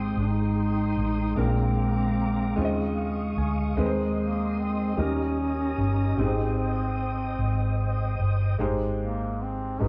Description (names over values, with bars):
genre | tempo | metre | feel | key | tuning
gospel | 50 BPM (dotted quarters) | 6/8 | straight | Ab major | A4 = 439 Hz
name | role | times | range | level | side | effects
mellow duduk | melody | 0.0-9.9 s | Bb3 to Eb4 | -34 LUFS | equal | none
clear concert grand piano | accompaniment | 0.0-9.9 s | Ab2 to Ab5 | -33 LUFS | equal | none
mellow tonewheel organ | sustained chords | 0.0-8.6 s | Ab3 to Eb6 | -32 LUFS | equal | slow rotary speaker, chorus vibrato
hollow-body short-scale fingered electric bass | bass | 0.0-9.9 s | G1 to Eb2 | -30 LUFS | equal | none
room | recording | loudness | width
wet large studio reverb, RT60 1.2 s | band playing live in one room | -26 LUFS | mono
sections
0.0-8.6 A section; 8.6-9.9 A section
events
grand piano fill 2.6-3.8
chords
0.0 Abmaj7; 1.4 Bb7; 2.6 Eb9sus4; 3.8 Ab/Eb; 5.0 Eb; 6.2 Abmaj7